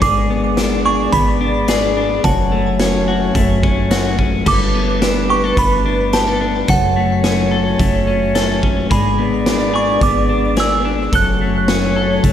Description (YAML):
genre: dream pop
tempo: 108 BPM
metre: 4/4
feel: straight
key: F# minor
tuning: A4 = 439 Hz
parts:
  - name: glassy synth bell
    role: melody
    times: 0.0-12.3 s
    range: F#5 to F#6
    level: -20 LUFS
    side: right 4 dB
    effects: chorus, digital delay
  - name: dark woodwind section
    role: sustained chords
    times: 0.0-12.3 s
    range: A3 to D5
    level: -21 LUFS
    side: right 1 dB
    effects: none
  - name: clean electric guitar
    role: arpeggios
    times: 0.0-12.3 s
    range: F#2 to A4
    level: -18 LUFS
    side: left 5 dB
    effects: analog chorus, digital delay
  - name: plucky analog bass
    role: bass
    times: 0.0-12.3 s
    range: F#1 to G#1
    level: -20 LUFS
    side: right 1 dB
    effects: none
  - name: raw garage drum kit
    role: drums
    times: 0.0-12.3 s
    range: crash cymbal, hi-hat, kick drum, snare drum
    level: -20 LUFS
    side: equal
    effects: none
room: moderate concert hall reverb, RT60 2.3 s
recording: none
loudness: -13 LUFS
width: side -10 dB against mid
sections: 0.0-4.5 A section; 4.5-12.3 A section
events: none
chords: 0.0 G#dim; 2.2 F#m; 4.5 Gadd9; 6.7 F#m; 8.9 G#dim; 11.1 F#m